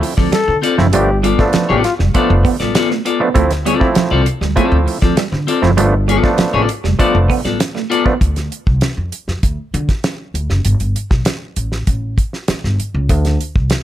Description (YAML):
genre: funk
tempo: 99 BPM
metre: 4/4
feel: straight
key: D dorian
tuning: A4 = 441 Hz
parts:
  - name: clean electric guitar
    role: accompaniment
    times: 0.0-8.1 s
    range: B3 to D5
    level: -18 LUFS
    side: left 6 dB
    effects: plate reverb
  - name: semi-hollow electric guitar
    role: riff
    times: 0.0-8.2 s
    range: F3 to B3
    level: -20 LUFS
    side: right 9 dB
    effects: tremolo
  - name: overdriven clav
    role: stabs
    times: 0.0-8.1 s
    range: F3 to E4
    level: -18 LUFS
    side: right 2 dB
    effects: plate reverb
  - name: damped 70s drum kit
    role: drums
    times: 0.0-13.8 s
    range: hi-hat, kick drum, snare drum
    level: -18 LUFS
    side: equal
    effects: none
  - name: upright bass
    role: bass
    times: 0.2-13.7 s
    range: F1 to D3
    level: -16 LUFS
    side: equal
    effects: none
  - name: clear trombone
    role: second line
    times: 0.3-1.9 s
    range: F4 to A4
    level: -19 LUFS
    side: left 4 dB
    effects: plate reverb
room: light reverb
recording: none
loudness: -13 LUFS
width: side -12 dB against mid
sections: 0.0-8.2 A section; 8.2-13.8 B section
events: none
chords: 0.0 Dm7; 0.9 G9; 3.4 Dm7; 5.8 G9; 8.2 Dm; 10.6 Gsus2; 13.1 D7(no3)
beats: 0.33 | 0.94 1.54 2.15 2.75 | 3.36 3.96 4.57 5.17 | 5.78 6.39 6.99 7.60 | 8.21 8.82 9.43 10.04 | 10.65 11.26 11.87 12.48 | 13.09 13.71